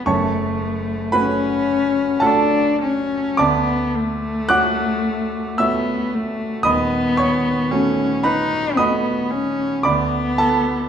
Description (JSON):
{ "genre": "classical, romantic duo for cello and grand piano", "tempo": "56 BPM", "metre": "3/4", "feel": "rubato", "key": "F# minor", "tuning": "A4 = 440 Hz", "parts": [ { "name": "warm cello", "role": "melody", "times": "0.0-10.9 s", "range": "A3 to D#4", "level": "-20 LUFS", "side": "left 3 dB", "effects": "none" }, { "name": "clear grand piano", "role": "accompaniment", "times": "0.0-10.9 s", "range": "D#1 to F#6", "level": "-19 LUFS", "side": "right 3 dB", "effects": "none" } ], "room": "wet recital hall reverb, RT60 1.4 s", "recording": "none", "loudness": "-17 LUFS", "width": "side -8 dB against mid", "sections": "0.0-10.9 A section", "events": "none", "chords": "0.1 F#m; 3.4 Dmaj7; 6.7 B7/D#; 9.9 E7(no3)/D (rootless)" }